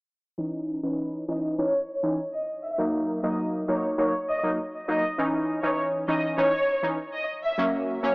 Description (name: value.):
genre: dancehall.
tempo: 100 BPM.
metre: 4/4.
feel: straight.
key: C# dorian.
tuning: A4 = 440 Hz.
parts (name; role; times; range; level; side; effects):
synth brass stab; accompaniment; 0.4-8.1 s; E3 to D#4; -26 LUFS; equal; chorus, low-pass filter.
warm studio violin section; melody; 0.8-8.1 s; B4 to E5; -27 LUFS; equal; low-pass filter, analog delay.
room: light reverb, small room ambience.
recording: dry, gritty hardware recording, small speaker sound.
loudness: -24 LUFS.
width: side -40 dB against mid.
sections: 0.4-8.1 A section.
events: filter sweep 0.4-8.1.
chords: 0.4 C#madd9; 2.8 D#m; 5.2 C#madd9; 7.6 F#.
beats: | 0.38 0.98 1.58 2.18 | 2.78 3.38 3.98 4.58 | 5.18 5.78 6.38 6.98 | 7.58.